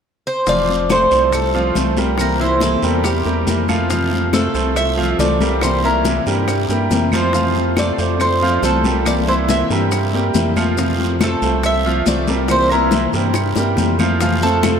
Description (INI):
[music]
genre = latin, Cuban son and guajira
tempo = 140 BPM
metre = 4/4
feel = straight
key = F major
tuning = A4 = 441 Hz
[part]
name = Cuban tres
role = melody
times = 0.3-14.8 s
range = G4 to E5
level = -19 LUFS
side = right 1 dB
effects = none
[part]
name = nylon-string guitar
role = accompaniment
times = 0.5-14.8 s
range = C3 to F4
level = -21 LUFS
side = left 4 dB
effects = none
[part]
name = bright grand piano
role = arpeggios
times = 0.5-14.8 s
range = E3 to F5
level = -21 LUFS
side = right 3 dB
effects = none
[part]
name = rubbery square bass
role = bass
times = 0.5-14.8 s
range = F1 to G2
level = -21 LUFS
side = right 1 dB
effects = none
[part]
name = bongos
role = percussion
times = 0.5-14.8 s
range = none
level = -28 LUFS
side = left 6 dB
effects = none
[part]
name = congas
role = percussion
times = 0.5-14.8 s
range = none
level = -26 LUFS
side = left 3 dB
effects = none
[part]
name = guiro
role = percussion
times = 0.5-14.8 s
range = none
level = -31 LUFS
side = right 5 dB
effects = none
[part]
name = maracas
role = percussion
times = 0.5-14.8 s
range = none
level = -33 LUFS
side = left 9 dB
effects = none
[part]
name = claves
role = percussion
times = 0.9-14.8 s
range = none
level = -34 LUFS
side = right 4 dB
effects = none
[sound]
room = wet cathedral reverb, RT60 5.8 s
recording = in a vast, echoing space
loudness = -14 LUFS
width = side -7 dB against mid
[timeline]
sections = 0.5-14.2 A section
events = drum fill 13.4-14.2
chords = 0.5 Fmaj9; 2.2 C7; 3.9 Fmaj9; 5.6 C7; 7.3 Fmaj9; 9.1 C7; 10.8 Fmaj9; 12.5 C7; 14.2 Fmaj7